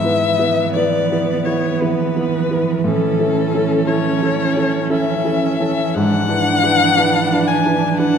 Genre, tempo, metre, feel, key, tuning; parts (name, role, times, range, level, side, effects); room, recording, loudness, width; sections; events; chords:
classical, slow romantic movement for piano quartet; 58 BPM; 3/4; rubato; A major; A4 = 439 Hz
dark violin; melody; 0.0-8.2 s; A4 to G#5; -19 LUFS; left 6 dB
dark cello; second line; 0.0-8.2 s; E3; -21 LUFS; right 9 dB
rich viola; accompaniment; 0.0-8.2 s; B3 to D4; -23 LUFS; right 4 dB
warm grand piano; accompaniment; 0.0-8.2 s; G#2 to B4; -19 LUFS; left 1 dB
wet recital hall reverb, RT60 1.4 s; -14 LUFS; side -7 dB against mid
0.0-8.2 A section
0.0 E/G#; 2.8 A; 5.9 E7/G#